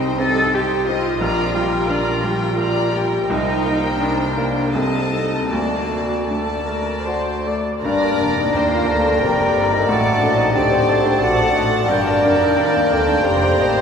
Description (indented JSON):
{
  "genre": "classical, romantic movement for piano and orchestra",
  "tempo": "76-90 BPM",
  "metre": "3/4",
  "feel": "rubato",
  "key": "G minor",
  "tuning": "A4 = 440 Hz",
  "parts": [
    { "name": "clear baby grand piano", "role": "melody", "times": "0.0-13.8 s", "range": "Bb1 to Eb5", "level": "-22 LUFS", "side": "left 1 dB", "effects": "none" },
    { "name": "rich chamber violin section", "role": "melody", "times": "0.0-13.8 s", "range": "A4 to Bb5", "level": "-27 LUFS", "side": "left 5 dB", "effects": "none" },
    { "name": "clear studio violin section", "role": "second line", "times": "0.0-13.8 s", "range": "Bb4 to Bb5", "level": "-27 LUFS", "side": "left 2 dB", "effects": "none" },
    { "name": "dark studio viola section", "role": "accompaniment", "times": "0.0-13.8 s", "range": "Bb3 to D5", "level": "-26 LUFS", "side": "right 1 dB", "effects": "none" },
    { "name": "warm chamber cello section", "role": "bass", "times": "0.0-13.8 s", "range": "D2 to A4", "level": "-24 LUFS", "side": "right 1 dB", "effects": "none" },
    { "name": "warm chamber double bass section", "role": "bass", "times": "0.0-13.8 s", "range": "F1 to Eb2", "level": "-27 LUFS", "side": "right 2 dB", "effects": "none" },
    { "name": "bright oboe", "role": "second line", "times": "7.8-13.8 s", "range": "G5 to Bb5", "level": "-25 LUFS", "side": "right 2 dB", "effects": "none" },
    { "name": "mellow clarinet", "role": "second line", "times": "7.8-13.8 s", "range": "D5", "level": "-26 LUFS", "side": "left 3 dB", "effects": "none" },
    { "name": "silver concert flute", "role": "second line", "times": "7.8-13.8 s", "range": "D5 to A5", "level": "-25 LUFS", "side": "equal", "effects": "none" },
    { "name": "clear bassoon", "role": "accompaniment", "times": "7.8-13.8 s", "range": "Bb3 to D4", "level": "-26 LUFS", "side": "right 1 dB", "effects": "none" },
    { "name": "mellow French horn section", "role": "sustained chords", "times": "7.8-13.8 s", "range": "D4 to A4", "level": "-21 LUFS", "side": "left 1 dB", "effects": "none" }
  ],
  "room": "wet church reverb, RT60 3.6 s",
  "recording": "minimal, uncompressed stereo recording",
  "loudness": "-16 LUFS",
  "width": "side -6 dB against mid",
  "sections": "0.0-7.8 A section; 7.8-13.8 B section",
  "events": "none",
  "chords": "0.0 Cm; 1.2 Gm/Bb; 3.3 Cm7; 4.7 Adim/C; 5.5 D; 7.8 Gm; 9.9 D7/A; 11.9 Gm",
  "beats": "0.52 | 1.21 1.89 2.58 | 3.28 4.00 4.74 | 5.51 6.29 7.07 | 7.83 8.53 9.21 | 9.88 10.55 11.22 | 11.90 12.56 13.24"
}